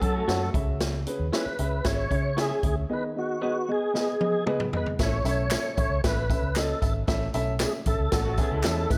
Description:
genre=uptempo 1960s-style soul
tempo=115 BPM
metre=4/4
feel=straight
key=unclear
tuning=A4 = 440 Hz
part: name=tonewheel organ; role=melody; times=0.0-9.0 s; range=F#4 to C#5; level=-32 LUFS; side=equal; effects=overdrive, chorus vibrato, slow rotary speaker
part: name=dark upright piano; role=accompaniment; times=0.0-9.0 s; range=A2 to F#5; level=-34 LUFS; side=equal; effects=none
part: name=electric guitar through a small old amp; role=riff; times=0.0-0.5, 8.2-9.0 s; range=G#3 to A4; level=-38 LUFS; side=equal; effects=spring reverb
part: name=vintage muted fingered electric bass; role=bass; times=0.0-9.0 s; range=G#1 to F#3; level=-32 LUFS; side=equal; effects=none
part: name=swinging big-band drum kit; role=drums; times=0.0-9.0 s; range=hi-hat, kick drum, snare drum, toms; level=-31 LUFS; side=equal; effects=none
part: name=electric guitar through a small old amp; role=stabs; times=0.3-4.6 s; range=E4 to D#5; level=-38 LUFS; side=equal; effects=tape echo
part: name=tambourine and handclaps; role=percussion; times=5.0-9.0 s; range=none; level=-40 LUFS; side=equal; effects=none
room=light reverb, studio ambience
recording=none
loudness=-26 LUFS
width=mono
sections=0.0-5.0 A section; 5.0-9.0 B section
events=drum fill 3.9-5.0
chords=0.0 F#m; 0.5 C#m; 2.9 G#m/D#; 5.0 A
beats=0.28 | 0.80 1.33 1.85 2.37 | 2.90 3.42 3.94 4.47 | 4.99 5.51 6.04 6.56 | 7.08 7.60 8.12 8.65

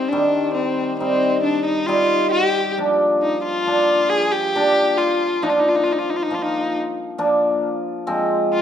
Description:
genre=klezmer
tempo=68 BPM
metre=3/4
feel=straight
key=unclear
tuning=A4 = 440 Hz
part: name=dark violin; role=melody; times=0.0-8.6 s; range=C4 to Ab4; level=-20 LUFS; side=left 1 dB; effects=none
part: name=cimbalom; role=accompaniment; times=0.0-8.6 s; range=Eb3 to F4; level=-19 LUFS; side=equal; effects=none
room=wet recital hall reverb, RT60 1.4 s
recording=none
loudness=-17 LUFS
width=side -9 dB against mid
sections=0.0-8.6 A section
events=none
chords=0.0 Cm; 2.8 Bb; 8.1 Fm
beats=| 0.11 1.00 1.88 | 2.77 3.65 4.54 | 5.42 6.30 7.19 | 8.07

